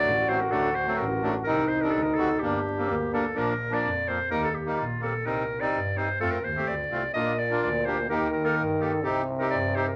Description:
klezmer; 127 BPM; 2/4; straight; G harmonic minor, Bb major from 3.4 s; A4 = 442 Hz
bright clarinet; melody; 0.0-10.0 s; F4 to Eb5; -31 LUFS; equal
growling trombone; second line; 0.0-3.4, 7.2-10.0 s; Bb2 to F#4; -30 LUFS; equal
accordion; accompaniment; 0.0-9.9 s; F3 to Bb4; -32 LUFS; equal
warm double bass; bass; 0.0-9.8 s; G1 to G2; -36 LUFS; equal
wet studio ambience, RT60 0.5 s; vinyl crackle; -27 LUFS; mono
0.0-3.4 A section; 3.4-10.0 B section
0.0 D; 1.5 Cm; 2.4 Gm; 3.4 Bb; 4.3 Eb; 5.3 Cm; 6.2 F; 7.2 Bb; 8.1 Eb; 9.0 Cm
0.04 | 0.52 0.99 | 1.47 1.94 | 2.41 2.89 | 3.36 3.83 | 4.31 4.78 | 5.26 5.73 | 6.21 6.68 | 7.15 7.62 | 8.10 8.57 | 9.04 9.51

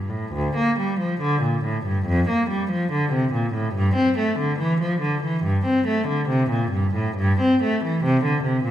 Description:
classical, baroque-style suite movement for unaccompanied cello; 71 BPM; 4/4; rubato; D minor; A4 = 440 Hz
rich cello; solo; 0.0-8.7 s; D2 to C4; -20 LUFS; equal
wet recital hall reverb, RT60 1.6 s; minimal, uncompressed stereo recording; -20 LUFS; side -11 dB against mid
0.3-8.7 A section
| 0.32 1.20 2.05 2.90 | 3.74 4.58 5.43 6.28 | 7.16 8.03

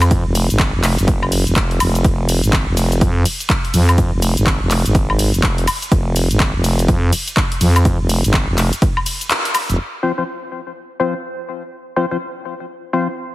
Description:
bass house; 124 BPM; 4/4; swing 62% on 16ths; F phrygian; A4 = 436 Hz
growling FM bass; bass; 0.0-9.8 s; F1 to F2; -15 LUFS; equal; overdrive, sidechain pumping
house drum kit; drums; 0.0-9.8 s; handclaps, hi-hat, ride cymbal, shaker, woodblock; -20 LUFS; left 1 dB; low-pass filter on hats, small room ambience, low-pass filter on cymbals, low-pass filter on perc, low-pass filter on snare
electronic kick drum; drums; 0.1-8.9 s; -18 LUFS; equal; small room ambience
percussive organ stab; stabs; 10.0-13.1 s; F3 to C5; -20 LUFS; left 3 dB; analog chorus, sidechain pumping, ping-pong delay
light reverb; heavily compressed radio sound, multiband compression; -14 LUFS; side -17 dB against mid
0.0-9.8 A section; 9.8-13.3 B section
drop 0.0-9.8; kick drops out 9.3-9.8; band accent 9.3
0.0 Fm; 9.8 F5
| 0.11 0.59 1.08 1.56 | 2.04 2.53 3.01 3.50 | 3.98 4.46 4.95 5.43 | 5.92 6.40 6.88 7.37 | 7.85 8.34 8.82 9.30 | 9.79 10.27 10.76 11.24 | 11.72 12.21 12.69

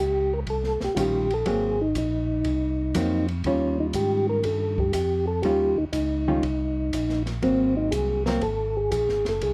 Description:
soul jazz organ trio; 121 BPM; 4/4; swing 69% on 8ths; Eb mixolydian; A4 = 439 Hz
percussive tonewheel organ; melody; 0.0-9.5 s; C4 to Bb4; -27 LUFS; equal; slow rotary speaker, chorus vibrato
tonewheel organ; bass; 0.0-9.5 s; Gb1 to Ab2; -31 LUFS; equal; overdrive, chorus vibrato, slow rotary speaker
open jazz drum kit; drums; 0.5-9.5 s; hi-hat, kick drum, ride cymbal, snare drum; -38 LUFS; equal
hollow-body jazz guitar; accompaniment; 1.0-8.4 s; Eb3 to F4; -30 LUFS; equal
little or no reverb; -25 LUFS; mono
0.0-9.5 A section
0.0 Eb9; 1.5 Ab9; 3.4 Eb9; 7.4 Ab9
0.47 0.96 | 1.46 1.96 2.45 2.95 | 3.45 3.95 4.44 4.94 | 5.44 5.93 6.43 6.93 | 7.43 7.92 8.42 8.92 | 9.42

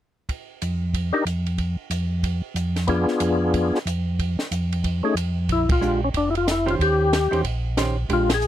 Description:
soul jazz organ trio; 184 BPM; 4/4; swing 63% on 8ths; Bb mixolydian; A4 = 440 Hz
compact cocktail drum kit; drums; 0.3-8.5 s; hi-hat, kick drum, ride cymbal, snare drum; -28 LUFS; right 1 dB
mellow tonewheel organ; bass; 0.6-8.5 s; F1 to F2; -24 LUFS; right 1 dB; chorus vibrato, slow rotary speaker
percussive tonewheel organ; melody; 1.1-8.5 s; A3 to Bb4; -20 LUFS; left 3 dB; slow rotary speaker, overdrive, chorus vibrato
vintage hollow-body jazz guitar; accompaniment; 5.8-8.3 s; Eb3 to C5; -26 LUFS; right 5 dB
little or no reverb; dry, close 1970s-style studio recording; -20 LUFS; side -12 dB against mid
0.3-5.5 A section; 5.5-8.5 B section
band accent 5.6, 8.2
0.3 N.C.; 2.9 Fdim7; 5.5 Bb13; 6.8 Eb6
| 0.28 0.61 0.93 1.26 | 1.58 1.91 2.23 2.56 | 2.88 3.21 3.53 3.86 | 4.18 4.51 4.83 5.16 | 5.49 5.81 6.13 6.46 | 6.79 7.11 7.44 7.76 | 8.09 8.41

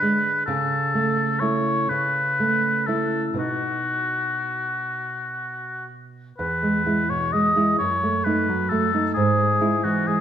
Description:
romantic duo for oboe and classical guitar; 39-45 BPM (dotted quarters); 6/8; rubato; E major; A4 = 441 Hz
warm oboe; melody; 0.0-10.2 s; F#4 to D#5; -22 LUFS; left 2 dB
nylon-string guitar; accompaniment; 0.0-10.2 s; E2 to E4; -24 LUFS; right 2 dB
wet recital hall reverb, RT60 1.4 s; recorded in a church or concert hall; -20 LUFS; side -10 dB against mid
0.0-6.4 A section; 6.4-10.2 B section
0.5 A/C#; 3.4 B; 6.4 E; 7.8 F#madd11; 9.2 E/G#
| 0.47 1.90 | 3.38 4.88 | 6.38 7.79 | 9.16

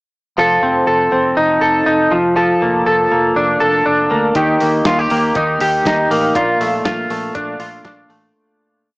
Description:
jangly indie pop; 121 BPM; 4/4; straight; Bb major; A4 = 441 Hz
direct-recorded clean electric guitar; arpeggios; 0.4-8.9 s; Bb2 to A4; -13 LUFS; equal; lush chorus, cassette tape
vintage muted fingered electric bass; bass; 0.4-8.3 s; F1 to Eb2; -26 LUFS; equal
dusty soul sampler-style drum kit; drums; 4.4-8.2 s; hi-hat, kick drum, snare drum; -23 LUFS; equal; cassette tape
light reverb; home recording on cassette, small speaker sound; -12 LUFS; side -30 dB against mid
0.4-8.3 verse
fade-out 6.4-8.3
0.4 F7; 2.1 Bbmaj7/F; 4.4 Eb; 6.4 Bbmaj7
| 0.38 0.88 1.38 1.87 | 2.37 2.87 3.37 3.87 | 4.36 4.86 5.36 5.86 | 6.35 6.85 7.35 7.85

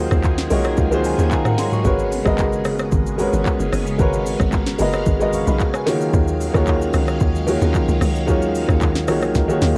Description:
amapiano; 112 BPM; 4/4; straight; G# dorian; A4 = 439 Hz
clear baby grand piano; accompaniment; 0.0-9.8 s; D#3 to C#6; -22 LUFS; equal
phased string machine; sustained chords; 0.0-9.8 s; C#3 to E#5; -30 LUFS; equal; ensemble chorus, phaser, sidechain pumping
tight log drum bass; bass; 0.0-9.7 s; F#1 to D#2; -24 LUFS; equal
smooth R&B drum kit; drums; 0.1-9.7 s; handclaps, hi-hat, kick drum, rim click, shaker, snare drum, toms; -24 LUFS; equal; cassette tape
congas and bongos; percussion; 1.9-9.8 s; -35 LUFS; equal
light reverb; home recording on cassette; -19 LUFS; mono
0.0-9.8 A section
grand piano fill 0.2-1.9, 9.6; drum fill 9.3-9.8
0.0 D#m11; 1.9 G#m11; 5.9 D#m11
0.24 0.78 1.31 | 1.85 2.39 2.92 3.46 | 3.99 4.53 5.06 5.60 | 6.14 6.67 7.21 7.74 | 8.28 8.81 9.35

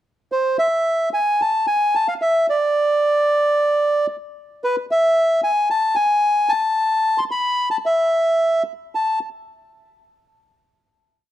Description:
tango; 112 BPM; 4/4; rubato; A harmonic minor; A4 = 440 Hz
bandoneon; solo; 0.3-9.2 s; B4 to C6; -16 LUFS; equal; slapback echo
little or no reverb; dry, close 1970s-style studio recording; -16 LUFS; side -12 dB against mid
0.3-8.9 A section; 8.9-11.1 final note
| 0.32 0.86 1.40 1.94 | 2.48 3.02 3.56 4.09 | 4.63 5.17 5.71 6.24 | 6.78 7.32 7.85 8.39 | 8.93

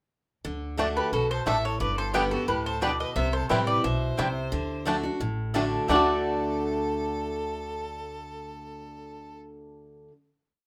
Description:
bluegrass; 176 BPM; 4/4; straight; D mixolydian; A4 = 441 Hz
picked steel-string acoustic guitar; accompaniment; 0.4-10.1 s; G2 to G4; -33 LUFS; equal
upright bass; bass; 0.4-10.1 s; G1 to D2; -36 LUFS; equal
bluegrass banjo; arpeggios; 0.8-10.1 s; G3 to A4; -32 LUFS; equal
mandolin; stabs; 0.8-10.1 s; A3 to A5; -34 LUFS; equal
mandolin; melody; 1.0-10.1 s; A4 to E5; -31 LUFS; equal
clear fiddle; second line; 1.0-9.4 s; F#4 to C5; -38 LUFS; equal
moderate small room reverb, RT60 0.5 s; -27 LUFS; mono
0.4-5.9 A section; 5.9-8.6 final chord
0.4 D; 1.8 G; 3.2 C; 4.5 D
| 0.45 0.79 1.12 1.46 | 1.80 2.14 2.48 2.82 | 3.16 3.50 3.84 4.18 | 4.53 4.87 5.21 5.55 | 5.89 6.24 6.58 6.92 | 7.26 7.60 7.94 8.28

